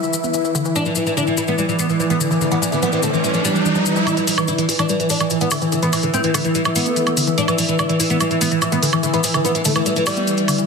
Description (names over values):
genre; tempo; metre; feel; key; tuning
psychedelic trance; 145 BPM; 4/4; straight; unclear; A4 = 438 Hz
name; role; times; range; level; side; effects
evolving wavetable pad; sustained chords; 0.0-10.7 s; E3 to E4; -24 LUFS; right 2 dB; chorus, built-in reverb
woody wave-folded pluck; riff; 0.0-10.6 s; D3 to E4; -22 LUFS; moving between left 4 dB and right 3 dB; chorus, auto-pan, ping-pong delay
maracas; percussion; 0.0-10.7 s; none; -26 LUFS; left 8 dB; none
airy breathy pad; texture; 0.0-10.7 s; E4 to E6; -26 LUFS; left 3 dB; chorus
oud; melody; 0.8-10.6 s; E3 to E4; -21 LUFS; equal; phaser, ping-pong delay
riser; sound effects; 1.6-4.1 s; none; -24 LUFS; right 2 dB; none
vowel-sweep wobble bass; second line; 2.8-3.0, 6.1-9.6 s; A3 to B3; -34 LUFS; right 4 dB; none
electronic hi-hat and woodblock; drums; 4.1-10.7 s; none; -22 LUFS; right 2 dB; none
room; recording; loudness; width
moderate lush hall reverb, RT60 2.0 s; dense, heavily limited modern master, high-pass filter; -16 LUFS; side -5 dB against mid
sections
0.0-4.1 A section; 4.1-10.7 B section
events
riser 1.6-4.1; build-up 4.1-10.7; filter sweep on ambient pad 4.1-10.7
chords
0.0 E5